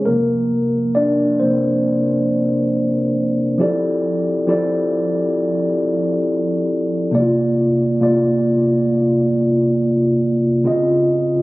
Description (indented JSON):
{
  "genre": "R&B",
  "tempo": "68 BPM",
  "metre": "4/4",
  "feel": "swing 54% on 16ths",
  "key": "F major",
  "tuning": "A4 = 440 Hz",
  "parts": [
    { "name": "mellow tine electric piano", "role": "solo", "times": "0.0-11.4 s", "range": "C3 to Eb5", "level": "-15 LUFS", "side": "equal", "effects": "slow stereo tremolo" }
  ],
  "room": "light reverb",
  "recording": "recorded on a phone in the room, club reverb, compression",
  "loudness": "-15 LUFS",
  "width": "side -20 dB against mid",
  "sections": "0.0-3.6 A section; 3.6-11.4 A section",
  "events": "tine electric piano solo 0.0-3.6",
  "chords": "0.1 C9sus4; 3.6 Fmaj13; 7.1 C9sus4; 10.6 Dbmaj9"
}